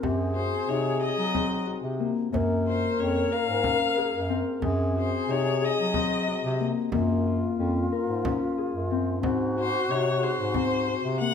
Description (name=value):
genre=contemporary instrumental, chamber music in an uneven meter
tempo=183 BPM (eighths)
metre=7/8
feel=straight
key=unclear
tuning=A4 = 440 Hz
part: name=breathy long shakuhachi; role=second line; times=0.0-11.2 s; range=F4 to Db5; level=-31 LUFS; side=left 2 dB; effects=none
part: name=Celtic harp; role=arpeggios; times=0.0-11.3 s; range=Bb3 to Bb4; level=-29 LUFS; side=left 6 dB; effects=none
part: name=breathy bass clarinet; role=bass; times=0.0-11.3 s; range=F2 to Gb3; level=-29 LUFS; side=right 1 dB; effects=none
part: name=frame drum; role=percussion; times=0.0-11.3 s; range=none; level=-35 LUFS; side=right 4 dB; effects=none
part: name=rich violin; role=melody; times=0.4-11.3 s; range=C5 to Gb5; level=-29 LUFS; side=left 5 dB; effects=none
room=wet recital hall reverb, RT60 1.3 s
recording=minimal, uncompressed stereo recording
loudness=-24 LUFS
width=side -7 dB against mid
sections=0.0-11.3 A section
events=none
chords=0.0 Ab7/Gb; 2.3 Bbm7; 4.6 Ab7/Gb; 6.9 Bbm7; 9.2 Ab7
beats=| 0.03 0.36 0.69 1.02 1.35 1.68 2.00 | 2.33 2.66 2.99 3.32 3.65 3.98 4.30 | 4.63 4.96 5.29 5.62 5.95 6.28 6.60 | 6.93 7.26 7.59 7.92 8.25 8.57 8.90 | 9.23 9.56 9.89 10.22 10.55 10.88 11.21